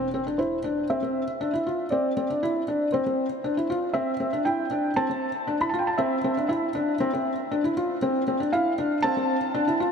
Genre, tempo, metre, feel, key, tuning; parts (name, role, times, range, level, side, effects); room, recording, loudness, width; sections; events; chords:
piano and strings electronica; 118 BPM; 4/4; straight; A minor; A4 = 441 Hz
felt-muted upright piano; riff; 0.0-9.9 s; C4 to F4; -25 LUFS; left 1 dB; digital delay
felt-muted upright piano; melody; 0.4-9.9 s; C5 to B5; -28 LUFS; right 1 dB; low-pass filter, digital delay
wet huge ambient reverb, RT60 5.0 s; -23 LUFS; side -6 dB against mid
0.0-9.9 A section
build-up 0.0-9.9; filter sweep on felt piano 0.0-9.9
0.0 Am (rootless)